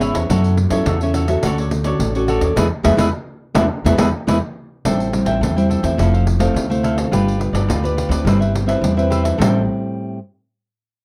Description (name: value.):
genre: samba and choro.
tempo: 106 BPM.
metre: 4/4.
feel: straight.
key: A minor from 4.8 s.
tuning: A4 = 442 Hz.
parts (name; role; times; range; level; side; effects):
cavaquinho; accompaniment; 0.0-9.6 s; E4 to G5; -25 LUFS; equal; none.
nylon-string guitar; accompaniment; 0.0-10.2 s; A2 to B4; -22 LUFS; equal; none.
upright bass; bass; 0.0-9.7 s; F1 to F#2; -22 LUFS; equal; none.
pandeiro; percussion; 0.0-9.5 s; none; -25 LUFS; equal; none.
room: little or no reverb.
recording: dry, close 1970s-style studio recording.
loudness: -18 LUFS.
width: mono.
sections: 0.0-4.8 A section; 4.8-9.4 B section; 9.4-11.0 C section.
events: band accent 2.6-4.8.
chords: 0.3 F#m7; 1.4 Dmaj7; 2.6 E; 4.8 Am7; 6.0 Fmaj7; 7.1 G7; 8.3 Cmaj7/G; 9.4 Am7.